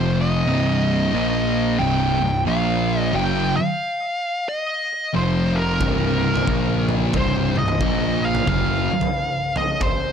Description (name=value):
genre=stoner and doom metal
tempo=90 BPM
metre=4/4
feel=swing 62% on 8ths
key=unclear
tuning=A4 = 440 Hz
part: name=fuzz lead guitar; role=melody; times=0.0-10.1 s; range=Bb4 to G5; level=-24 LUFS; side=equal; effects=wah, distortion, analog delay
part: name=thick fuzz guitar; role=riff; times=0.0-8.9 s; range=C2 to Bb3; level=-23 LUFS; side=left 9 dB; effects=distortion
part: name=thick fuzz guitar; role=riff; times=0.0-8.9 s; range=C2 to Bb3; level=-23 LUFS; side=right 10 dB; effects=distortion
part: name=fuzz picked electric bass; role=bass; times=0.0-8.9 s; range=C1 to Bb1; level=-25 LUFS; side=equal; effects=overdrive
part: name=oversized low-tuned drum kit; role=drums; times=5.8-10.0 s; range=kick drum, toms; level=-24 LUFS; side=equal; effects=none
room=light reverb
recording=none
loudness=-18 LUFS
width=side -7 dB against mid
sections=0.0-10.1 A section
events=none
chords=0.5 Cm; 1.1 Bb5; 1.8 C5; 2.5 Bb5; 3.1 Ebm9/Gb; 5.1 F5; 5.8 C5; 6.5 Bb5; 7.1 Cm; 7.8 Bb5; 8.5 Ebm9/Gb (rootless)